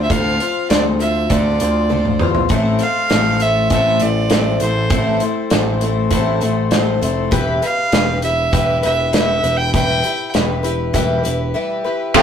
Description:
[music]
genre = folk rock and heartland rock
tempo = 100 BPM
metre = 4/4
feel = straight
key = unclear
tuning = A4 = 440 Hz
[part]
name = clear fiddle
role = melody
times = 0.0-12.2 s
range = C5 to G5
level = -19 LUFS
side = right 2 dB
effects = none
[part]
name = picked twelve-string acoustic guitar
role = accompaniment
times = 0.0-12.2 s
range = A2 to C5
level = -20 LUFS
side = left 4 dB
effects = none
[part]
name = picked electric bass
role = bass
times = 0.0-12.2 s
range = E1 to E2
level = -20 LUFS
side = equal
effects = none
[part]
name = loose indie drum kit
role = drums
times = 0.1-12.2 s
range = crash cymbal, hi-hat, kick drum, snare drum, toms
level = -19 LUFS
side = equal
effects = none
[part]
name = bright tonewheel organ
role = sustained chords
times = 12.2 s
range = C4 to C5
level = -15 LUFS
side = right 1 dB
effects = overdrive, chorus vibrato, stopped rotary speaker
[part]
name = overdriven electric guitar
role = riff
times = 12.2 s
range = F2 to F4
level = -8 LUFS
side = right 1 dB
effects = none
[sound]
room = moderate small room reverb, RT60 0.5 s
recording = rough rehearsal-room recording, tube saturation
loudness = -14 LUFS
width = side -8 dB against mid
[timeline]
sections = 0.0-12.2 A section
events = drum fill 1.9-2.5; break 11.5-12.2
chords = 0.0 Dm7; 2.5 Am; 7.3 Em

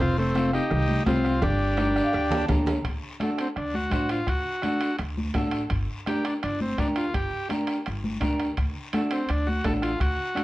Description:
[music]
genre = latin, cumbia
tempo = 168 BPM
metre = 4/4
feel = straight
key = unclear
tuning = A4 = 440 Hz
[part]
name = combo organ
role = melody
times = 0.0-10.4 s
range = A3 to A4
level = -27 LUFS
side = equal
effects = none
[part]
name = upright bass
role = bass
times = 0.0-10.2 s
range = F1 to D2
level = -29 LUFS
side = equal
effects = none
[part]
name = congas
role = percussion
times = 0.3-10.4 s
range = none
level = -32 LUFS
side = left 1 dB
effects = none
[part]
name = cowbell and timbales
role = percussion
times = 0.3-10.4 s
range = none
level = -36 LUFS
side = right 3 dB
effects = none
[part]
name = electric guitar at the edge of break-up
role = accompaniment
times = 0.4-10.4 s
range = C4 to Bb5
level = -29 LUFS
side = equal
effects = spring reverb
[part]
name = bombo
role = percussion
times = 0.4-10.4 s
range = none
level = -31 LUFS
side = equal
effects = none
[part]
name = guiro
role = percussion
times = 0.4-10.4 s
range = none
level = -44 LUFS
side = left 3 dB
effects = none
[sound]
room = moderate studio reverb, RT60 0.7 s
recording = worn, warbling old tape, cassette tape, warbly pitch drift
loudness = -23 LUFS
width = side -17 dB against mid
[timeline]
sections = 0.0-2.9 A section; 2.9-10.4 B section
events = drum fill 1.8-2.9; clean electric guitar fill 1.8-2.9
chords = 0.0 F; 1.4 Gm; 2.9 D; 5.7 Gm; 8.6 D

